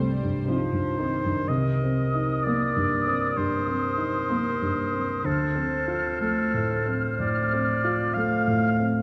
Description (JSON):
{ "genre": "cinematic, emotional film score for orchestra", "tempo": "63 BPM", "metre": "4/4", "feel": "rubato", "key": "C dorian", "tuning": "A4 = 444 Hz", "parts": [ { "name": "warm studio violin section", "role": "melody", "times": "0.0-0.5 s", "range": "C5", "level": "-45 LUFS", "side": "equal", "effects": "none" }, { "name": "warm grand piano", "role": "accompaniment", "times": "0.0-9.0 s", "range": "C2 to F4", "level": "-28 LUFS", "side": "equal", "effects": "none" }, { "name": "warm studio viola section", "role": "accompaniment", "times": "0.0-1.5 s", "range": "Eb3 to G3", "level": "-34 LUFS", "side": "equal", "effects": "none" }, { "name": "dark studio cello section", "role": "bass", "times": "0.0-1.3 s", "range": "C3", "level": "-36 LUFS", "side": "equal", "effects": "none" }, { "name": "warm oboe", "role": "second line", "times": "0.5-9.0 s", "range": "A4 to F5", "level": "-31 LUFS", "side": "equal", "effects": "none" }, { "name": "bright clarinet", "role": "second line", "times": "1.5-8.8 s", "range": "Bb4 to C5", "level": "-35 LUFS", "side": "equal", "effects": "none" }, { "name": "mellow hollow large flute ensemble", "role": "second line", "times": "1.5-8.8 s", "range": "Eb6 to F6", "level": "-34 LUFS", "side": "equal", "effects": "none" } ], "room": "wet scoring stage reverb, RT60 1.9 s", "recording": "dark, warm production", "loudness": "-25 LUFS", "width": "mono", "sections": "0.0-1.5 A section; 1.5-9.0 B section", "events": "none", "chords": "0.0 Cm; 1.5 Cm7; 5.3 Dm7" }